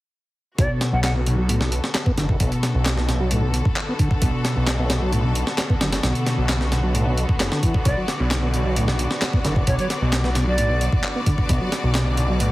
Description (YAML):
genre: breakbeat, breaks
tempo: 132 BPM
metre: 4/4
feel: straight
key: unclear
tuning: A4 = 441 Hz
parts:
  - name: jazz flute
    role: melody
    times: 0.6-1.1, 7.9-10.8 s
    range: C#5 to F#5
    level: -29 LUFS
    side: right 1 dB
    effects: telephone sound, dub echo
  - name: clear symphonic string section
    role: sustained chords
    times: 0.6-12.5 s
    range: D3 to D5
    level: -28 LUFS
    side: left 1 dB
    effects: sidechain pumping
  - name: tonewheel organ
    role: riff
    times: 0.6-12.5 s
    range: A2 to B3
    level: -25 LUFS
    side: equal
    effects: chorus vibrato, slow rotary speaker, tube saturation, vintage 12-bit sampler grit, low-pass filter
  - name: phased detuned saw bass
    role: bass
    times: 0.6-12.5 s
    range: F#1 to B1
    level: -22 LUFS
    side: equal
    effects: phaser
  - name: breakbeat sampler-style drum kit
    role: drums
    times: 0.6-12.5 s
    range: hi-hat, kick drum, snare drum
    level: -23 LUFS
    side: equal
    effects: none
  - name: electronic handclaps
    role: drums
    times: 1.0-12.0 s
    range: none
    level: -31 LUFS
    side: left 1 dB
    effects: none
room: light reverb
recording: heavily compressed radio sound, multiband compression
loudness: -18 LUFS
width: side -17 dB against mid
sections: 0.6-12.5 A section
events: filter sweep on tonewheel organ 0.6-12.5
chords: 0.6 Bm7